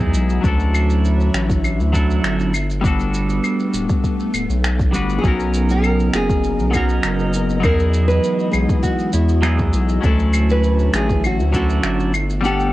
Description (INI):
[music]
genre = sunset chillout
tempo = 100 BPM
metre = 4/4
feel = straight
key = unclear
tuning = A4 = 437 Hz
[part]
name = clean electric guitar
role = accompaniment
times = 0.0-12.7 s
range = F#3 to F#5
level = -21 LUFS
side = moving between left 4 dB and right 3 dB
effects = auto-pan, vintage 12-bit sampler grit
[part]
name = soft string machine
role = sustained chords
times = 0.0-12.7 s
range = C#3 to D#5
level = -27 LUFS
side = left 1 dB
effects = ensemble chorus
[part]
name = round analog bass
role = bass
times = 0.0-12.7 s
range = D1 to E2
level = -18 LUFS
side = equal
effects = none
[part]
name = electronic kick drum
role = drums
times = 0.0-11.7 s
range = none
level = -20 LUFS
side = equal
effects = none
[part]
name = electronic shaker, claves and finger snaps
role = drums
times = 0.0-12.7 s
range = none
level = -26 LUFS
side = equal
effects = none
[part]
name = nylon-string guitar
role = melody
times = 5.2-12.7 s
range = E4 to B4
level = -23 LUFS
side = right 1 dB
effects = analog delay
[sound]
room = light reverb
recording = home recording on cassette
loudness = -15 LUFS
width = side -16 dB against mid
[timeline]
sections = 0.0-12.7 A section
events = kick drops out 12.4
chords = 0.4 Dmaj9; 2.5 Gmaj9; 5.2 Bmaj9; 7.6 Emaj9; 10.0 Dmaj9; 12.1 Gmaj9